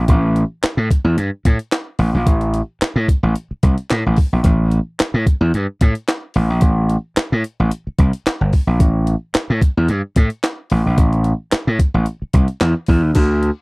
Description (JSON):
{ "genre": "funk", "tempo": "110 BPM", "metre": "4/4", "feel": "straight", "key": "unclear", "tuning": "A4 = 442 Hz", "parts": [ { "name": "gritty slap bass", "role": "bass", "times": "0.0-13.5 s", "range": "G1 to A2", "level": "-15 LUFS", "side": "equal", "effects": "overdrive" }, { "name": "breakbeat sampler-style drum kit", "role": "drums", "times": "0.1-13.6 s", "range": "crash cymbal, handclaps, hi-hat, kick drum, snare drum", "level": "-15 LUFS", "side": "equal", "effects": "none" } ], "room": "little or no reverb", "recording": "dry, close 1970s-style studio recording", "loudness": "-15 LUFS", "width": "side -32 dB against mid", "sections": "0.0-13.2 A section", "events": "none", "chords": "none", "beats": "| 0.09 0.64 1.18 1.73 | 2.27 2.81 3.36 3.90 | 4.45 4.99 5.54 6.08 | 6.63 7.17 7.71 8.26 | 8.80 9.35 9.89 10.44 | 10.98 11.53 12.07 12.62 | 13.16" }